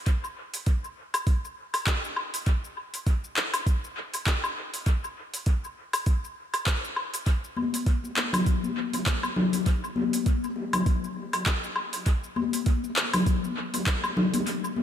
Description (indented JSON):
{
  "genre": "downtempo",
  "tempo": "100 BPM",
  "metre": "4/4",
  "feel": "swing 57% on 16ths",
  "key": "none",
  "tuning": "none",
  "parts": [
    { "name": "deep house drum kit", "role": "drums", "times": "0.1-14.7 s", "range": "handclaps, hi-hat, shaker, woodblock", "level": "-30 LUFS", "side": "left 1 dB", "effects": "overdrive, studio reverb, dub echo" },
    { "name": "electronic kick drum", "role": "drums", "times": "0.1-14.0 s", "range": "none", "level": "-24 LUFS", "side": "right 1 dB", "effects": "studio reverb" },
    { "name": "congas", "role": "percussion", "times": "7.6-14.8 s", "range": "none", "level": "-28 LUFS", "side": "left 3 dB", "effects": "dub echo" }
  ],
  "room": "light reverb",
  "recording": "echo-heavy mix",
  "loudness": "-25 LUFS",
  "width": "side -10 dB against mid",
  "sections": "0.0-14.8 A section",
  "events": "break 14.5-14.8",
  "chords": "none"
}